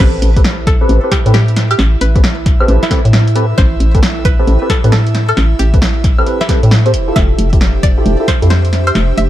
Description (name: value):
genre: UK garage, two-step garage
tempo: 134 BPM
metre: 4/4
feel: swing 64% on 16ths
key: A minor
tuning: A4 = 440 Hz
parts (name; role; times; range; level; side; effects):
- string-like resonator pluck; melody; 0.0-9.3 s; E4 to E5; -22 LUFS; equal; chorus, phaser, digital delay
- airy breathy pad; sustained chords; 0.0-9.3 s; E4 to E5; -25 LUFS; right 4 dB; chorus, sidechain pumping
- percussive organ stab; stabs; 0.0-8.5 s; C4 to C5; -19 LUFS; equal; ensemble chorus, tape echo
- hollow knocking FM bass; bass; 0.0-9.3 s; F1 to A2; -12 LUFS; equal; none
- electronic kick drum; drums; 0.0-8.4 s; none; -13 LUFS; equal; none
- punchy analog drum machine; drums; 0.0-9.3 s; crash cymbal, hi-hat, snare drum, woodblock; -18 LUFS; equal; none
- warbly tape-like pad; texture; 7.3-9.3 s; D4 to E5; -23 LUFS; right 1 dB; chorus, built-in reverb, sidechain pumping
room: little or no reverb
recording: dark, warm production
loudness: -9 LUFS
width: side -13 dB against mid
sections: 0.0-9.3 A section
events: drop 0.0-9.3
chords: 0.0 Am9; 6.9 Fmaj9